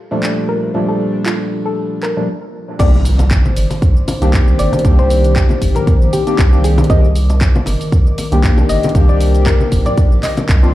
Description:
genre	deep house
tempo	117 BPM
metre	4/4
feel	swing 55% on 16ths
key	C minor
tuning	A4 = 440 Hz
part	dark analog pad	sustained chords	0.0-10.7 s	Eb3 to D6	-24 LUFS	left 1 dB	chorus, phaser, sidechain pumping
part	percussive organ stab	stabs	0.1-10.7 s	Bb2 to G4	-19 LUFS	left 1 dB	lush chorus, sidechain pumping, analog delay
part	house drum kit	drums	0.2-10.7 s	crash cymbal, handclaps, hi-hat, shaker	-25 LUFS	equal	studio reverb
part	soft round pluck	melody	0.5-10.6 s	F4 to Eb5	-22 LUFS	left 1 dB	wide subtle chorus, tape echo
part	round analog bass	bass	2.8-10.7 s	G1 to C2	-13 LUFS	equal	sidechain pumping
part	electronic kick drum	drums	2.8-10.6 s	none	-12 LUFS	equal	studio reverb
part	congas	percussion	2.8-10.5 s	none	-22 LUFS	left 2 dB	none
part	impact	sound effects	2.8-4.8 s	none	-22 LUFS	equal	none
room	little or no reverb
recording	played on a big sound system in a bare room, cassette tape, large studio reverb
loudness	-11 LUFS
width	side -15 dB against mid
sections	0.0-2.8 A section; 2.8-10.7 B section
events	stop 2.3-2.8; drop 2.8-10.7; impact 2.8-4.8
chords	0.0 Gm9; 2.8 Cm9

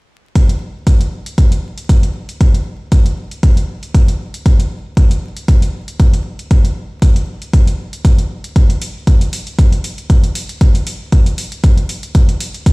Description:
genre	deep house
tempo	117 BPM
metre	4/4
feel	swing 54% on 16ths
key	none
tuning	none
part	electronic hi-hat	drums	0.4-12.7 s	none	-29 LUFS	equal	overdrive
part	electronic kick drum	drums	0.4-12.7 s	none	-9 LUFS	equal	overdrive
room	little or no reverb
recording	played on a big sound system in a bare room, stone room reverb, vinyl crackle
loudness	-12 LUFS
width	side -29 dB against mid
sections	0.4-12.7 A section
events	none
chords	none

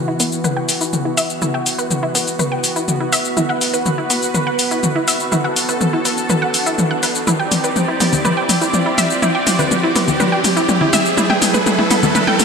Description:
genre	melodic techno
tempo	123 BPM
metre	4/4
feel	straight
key	E minor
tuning	A4 = 439 Hz
part	lush unison pad	sustained chords	0.0-12.4 s	E3 to D5	-21 LUFS	right 1 dB	chorus, vintage 12-bit sampler grit
part	riser	sound effects	3.2-12.4 s	none	-25 LUFS	right 2 dB	none
part	analog pluck	arpeggios	0.1-12.3 s	B3 to G5	-20 LUFS	right 1 dB	chorus, ping-pong delay
part	techno drum kit	drums	0.2-12.4 s	congas, hi-hat, shaker, toms	-17 LUFS	left 2 dB	none
room	wet lush hall reverb, RT60 2.3 s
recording	bright 1980s-style digital production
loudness	-14 LUFS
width	side -5 dB against mid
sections	0.0-12.4 A section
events	build-up 0.0-12.4; drum fill 0.0-12.4; filter sweep on synth arpeggio sound 0.0-12.4; riser 3.2-12.4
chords	0.0 E5; 3.4 B5; 7.3 C; 11.2 A5

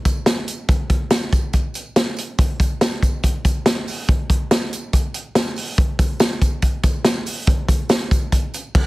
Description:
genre	indie pop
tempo	142 BPM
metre	4/4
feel	straight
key	none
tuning	none
part	vintage drum kit	drums	0.1-8.8 s	crash cymbal, hi-hat, kick drum, snare drum	-17 LUFS	equal	none
part	tambourine	percussion	0.1-8.6 s	none	-36 LUFS	right 3 dB	none
room	light reverb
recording	heavily compressed radio sound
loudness	-17 LUFS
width	side -20 dB against mid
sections	0.0-8.9 A section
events	none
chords	none

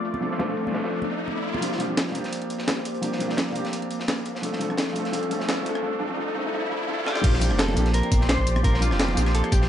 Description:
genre	liquid drum and bass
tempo	171 BPM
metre	4/4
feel	straight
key	unclear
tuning	A4 = 440 Hz
part	warm grand piano	accompaniment	0.0-9.7 s	F3 to A4	-28 LUFS	equal	low-pass filter, ping-pong delay
part	lush unison pad	sustained chords	0.0-9.7 s	A3 to C6	-33 LUFS	left 2 dB	chorus, phaser
part	breakbeat sampler-style drum kit	drums	0.0-9.6 s	crash cymbal, hi-hat, rim click, snare drum, tambourine	-28 LUFS	equal	low-pass filter on hats, studio reverb, low-pass filter on perc, low-pass filter on snare, low-pass filter on cymbals
part	crunchy breakbeat drum kit	drums	0.0-9.7 s	hi-hat, snare drum	-34 LUFS	equal	high-pass filter on hats, low-pass filter on hats, studio reverb, high-pass filter on snare, low-pass filter on snare, high-pass filter on room, low-pass filter on room
part	riser	sound effects	0.1-7.2 s	none	-33 LUFS	equal	none
part	congas	percussion	0.1-1.6, 7.7-9.6 s	none	-34 LUFS	right 2 dB	none
part	mellow electric guitar	melody	7.1-9.7 s	F4 to C5	-30 LUFS	equal	tape echo
part	warm sub bass	bass	7.2-9.7 s	F1 to Bb1	-23 LUFS	equal	none
part	electronic kick drum	drums	7.2-9.6 s	none	-22 LUFS	equal	studio reverb
room	moderate plate reverb, RT60 1.6 s, small room ambience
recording	high-pass filter, nothing above 11.0 kHz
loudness	-22 LUFS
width	side -10 dB against mid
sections	0.0-1.6 A section; 1.6-7.2 B section; 7.2-9.7 C section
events	riser 0.1-1.6, 1.6-7.2; build-up 1.6-7.2; filter sweep on grand piano 1.6-7.2; drum fill 7.1; drop 7.2-9.7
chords	0.0 F6; 1.6 Bb69; 4.4 F6; 7.2 Bb69

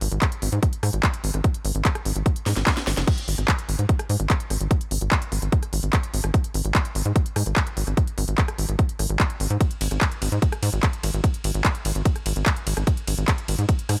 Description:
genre	psychedelic trance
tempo	147 BPM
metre	4/4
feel	straight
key	unclear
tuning	A4 = 440 Hz
part	tight sequencer bass	bass	0.0-14.0 s	F#1 to G#2	-26 LUFS	equal	none
part	techno drum kit	drums	0.0-14.0 s	crash cymbal, handclaps, hi-hat, ride cymbal, rim click, snare drum	-30 LUFS	equal	none
part	electronic kick drum	drums	0.2-13.8 s	none	-24 LUFS	equal	none
room	digital ambience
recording	none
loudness	-23 LUFS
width	mono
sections	0.0-14.0 A section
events	drum fill 2.5-3.1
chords	none

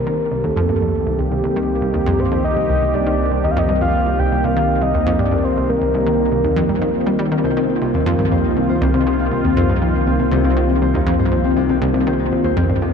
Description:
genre	ambient, sequencer-driven space music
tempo	120 BPM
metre	4/4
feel	straight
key	C minor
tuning	A4 = 440 Hz
part	soft octave-layered synth lead	melody	0.0-7.2 s	G4 to G5	-22 LUFS	left 1 dB	chorus, tape echo
part	sweeping resonant pad	sustained chords	0.0-12.9 s	Eb3 to G4	-20 LUFS	equal	chorus
part	analog pluck	riff	0.0-12.9 s	C2 to G3	-20 LUFS	right 1 dB	chorus, tape echo
part	round analog bass	bass	0.0-12.9 s	C2	-24 LUFS	right 1 dB	none
part	Celtic harp	arpeggios	7.4-12.9 s	C3 to C5	-20 LUFS	left 7 dB	auto-pan, tape echo
room	wet huge ambient reverb, RT60 7.7 s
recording	dark, warm production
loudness	-15 LUFS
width	side -6 dB against mid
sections	0.0-12.9 A section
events	none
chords	0.0 Cm7

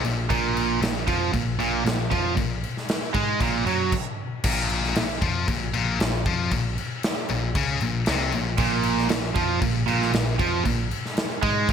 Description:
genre	hard rock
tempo	116 BPM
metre	4/4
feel	straight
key	Bb minor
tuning	A4 = 440 Hz
part	scooped high-gain guitar	riff	0.0-11.7 s	Bb2 to Ab3	-27 LUFS	left 6 dB	distortion
part	overdriven picked electric bass	bass	0.0-11.7 s	Bb1 to Ab2	-28 LUFS	equal	none
part	big rock drum kit	drums	0.0-11.7 s	crash cymbal, kick drum, snare drum	-26 LUFS	equal	none
part	cranked stack guitar	riff	0.3-3.9, 8.6-11.7 s	Bb2 to Ab3	-26 LUFS	right 13 dB	overdrive
room	light reverb, small room ambience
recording	none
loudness	-22 LUFS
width	side -7 dB against mid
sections	0.0-4.4 A section; 4.4-11.7 A section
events	stop 3.9-4.4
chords	0.0 Bb5

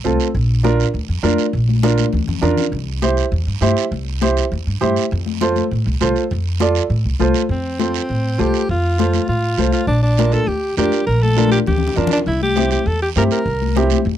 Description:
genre	latin, cumbia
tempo	201 BPM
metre	4/4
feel	straight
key	F major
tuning	A4 = 441 Hz
part	warm upright piano	accompaniment	0.0-14.0 s	C4 to D5	-19 LUFS	right 5 dB	none
part	upright bass	bass	0.0-14.2 s	Bb1 to A2	-19 LUFS	equal	none
part	guiro	percussion	0.0-14.2 s	none	-30 LUFS	right 22 dB	none
part	congas	percussion	0.1-14.2 s	none	-22 LUFS	left 12 dB	none
part	clear alto saxophone	melody	7.5-13.9 s	C4 to Bb4	-20 LUFS	equal	none
room	little or no reverb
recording	dry, close 1970s-style studio recording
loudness	-15 LUFS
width	side -11 dB against mid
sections	0.0-7.5 A section; 7.5-14.2 B section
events	drum fill 1.8-2.7, 11.4-12.3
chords	0.3 Bb; 2.7 C; 5.1 F; 9.9 Bb; 12.3 C7

